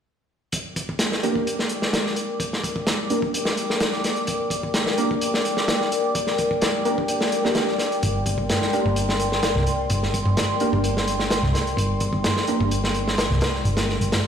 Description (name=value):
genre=breakbeat, breaks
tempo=128 BPM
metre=4/4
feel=straight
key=G minor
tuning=A4 = 440 Hz
part: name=dark analog pad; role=sustained chords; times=1.2-14.3 s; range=Bb4 to D6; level=-26 LUFS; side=left 1 dB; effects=chorus, vintage 12-bit sampler grit, sidechain pumping
part: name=crunchy breakbeat drum kit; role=drums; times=0.5-14.2 s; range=hi-hat, kick drum, snare drum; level=-24 LUFS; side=equal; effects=high-pass filter on kick, high-pass filter on hats, high-pass filter on snare, high-pass filter on room
part: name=orchestra-hit-like synth stab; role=stabs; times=1.2-14.3 s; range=Bb3 to Bb4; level=-26 LUFS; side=right 2 dB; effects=built-in reverb, ping-pong delay
part: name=hollow-body short-scale picked electric bass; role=bass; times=8.0-14.1 s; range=G1 to C2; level=-23 LUFS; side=equal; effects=none
room=moderate lush hall reverb, RT60 1.8 s, studio reverb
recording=played on a big sound system in a bare room, large studio reverb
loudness=-20 LUFS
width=side -8 dB against mid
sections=0.5-14.3 A section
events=none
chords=0.5 Gm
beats=| 0.53 1.00 1.47 1.93 | 2.40 2.87 3.34 3.81 | 4.28 4.75 5.21 5.68 | 6.15 6.62 7.09 7.56 | 8.03 8.50 8.96 9.43 | 9.90 10.37 10.84 11.31 | 11.78 12.25 12.71 13.18 | 13.65 14.12